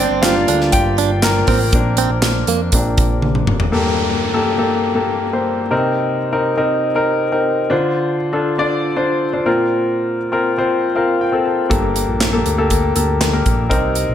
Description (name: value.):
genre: piano-driven pop.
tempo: 120 BPM.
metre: 4/4.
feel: straight.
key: unclear.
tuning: A4 = 437 Hz.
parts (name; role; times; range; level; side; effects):
clear concert grand piano; accompaniment; 0.0-14.1 s; G2 to A5; -16 LUFS; left 2 dB; slapback echo.
direct-recorded clean electric guitar; riff; 0.0-2.6 s; Bb3 to D4; -21 LUFS; right 10 dB; none.
fat analog bass; bass; 0.0-3.7, 11.7-14.1 s; F1 to F2; -20 LUFS; equal; none.
modern studio drum kit; drums; 0.2-3.7, 11.7-14.1 s; handclaps, hi-hat, kick drum, snare drum, toms; -18 LUFS; equal; none.
downlifter; sound effects; 3.7-7.7 s; none; -26 LUFS; right 1 dB; none.
room: moderate recital hall reverb, RT60 1.3 s, small room ambience.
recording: big arena sound.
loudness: -14 LUFS.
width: side -10 dB against mid.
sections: 0.0-3.7 A section; 3.7-14.1 B section.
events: grand piano solo 0.0-3.7; drum fill 3.2-3.7; grand piano fill 10.7-11.7.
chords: 0.0 Gm; 1.7 Bbadd9; 3.7 Gmadd9; 5.7 Cm7; 7.7 Dm7; 9.5 Bbsus2; 11.7 Gmadd9.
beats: 0.24 0.73 1.23 | 1.73 2.23 2.73 3.22 | 3.72 4.22 4.72 5.22 | 5.72 6.22 6.72 7.22 | 7.72 8.21 8.71 9.21 | 9.71 10.21 10.71 11.21 | 11.71 12.21 12.71 13.21 | 13.71.